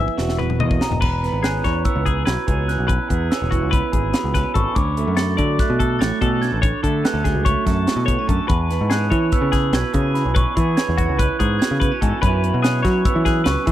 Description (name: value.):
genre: math rock and midwest emo.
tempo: 289 BPM (eighths).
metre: 9/8.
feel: straight.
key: E mixolydian.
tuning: A4 = 440 Hz.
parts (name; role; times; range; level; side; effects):
electric guitar through a small old amp; accompaniment; 0.0-13.7 s; E2 to G#4; -25 LUFS; right 8 dB; none.
twelve-string electric guitar; arpeggios; 0.0-13.7 s; C#4 to E5; -27 LUFS; left 9 dB; none.
picked electric bass; bass; 0.0-13.7 s; E1 to F#3; -21 LUFS; equal; none.
crisp fusion drum kit; drums; 0.1-13.7 s; crash cymbal, hi-hat, kick drum, snare drum, toms; -22 LUFS; equal; none.
glockenspiel with rubber mallets; melody; 0.8-13.7 s; G#5 to A6; -25 LUFS; right 1 dB; none.
room: small room ambience.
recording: dry, close 1970s-style studio recording.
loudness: -17 LUFS.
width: side -12 dB against mid.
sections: 0.0-1.0 A section; 1.0-13.7 B section.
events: drum fill 0.0-1.0.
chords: 0.0 Emaj9#11; 1.0 E69; 4.8 Dmaj7; 8.5 E69; 12.2 F#9sus4.